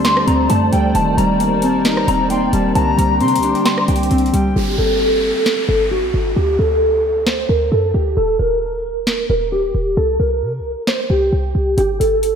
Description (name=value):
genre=hip hop, trap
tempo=133 BPM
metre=4/4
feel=half-time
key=G minor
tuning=A4 = 440 Hz
part: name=electric guitar at the edge of break-up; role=melody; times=0.0-12.4 s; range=F#4 to C6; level=-18 LUFS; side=equal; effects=ensemble chorus, low-pass filter, ping-pong delay
part: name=reedy silver concert flute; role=second line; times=0.0-4.5 s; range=G5 to C6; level=-25 LUFS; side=left 4 dB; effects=ping-pong delay
part: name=Celtic harp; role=accompaniment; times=0.0-7.1 s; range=D3 to D5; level=-19 LUFS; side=equal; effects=none
part: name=hollow soft pad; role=sustained chords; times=0.0-4.5 s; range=D4 to G5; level=-24 LUFS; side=right 2 dB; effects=ensemble chorus
part: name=short 808-style bass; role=bass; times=0.0-12.4 s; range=Eb1 to C3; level=-20 LUFS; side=equal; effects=none
part: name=trap drum kit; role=drums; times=0.0-12.3 s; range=hi-hat, rim click, snare drum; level=-22 LUFS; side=equal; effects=overdrive
part: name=downlifter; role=sound effects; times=4.6-8.2 s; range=none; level=-28 LUFS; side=equal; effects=none
room=moderate lush hall reverb, RT60 1.6 s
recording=dreamy mix soaked in reverb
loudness=-14 LUFS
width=side -7 dB against mid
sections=0.0-4.6 A section; 4.6-12.4 B section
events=hi-hats muted 4.6-11.8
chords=0.0 D7sus4; 1.0 Eb6; 2.8 Csus2; 4.6 Gmadd9; 6.4 D5; 8.2 Eb; 10.0 C5; 11.8 Gsus2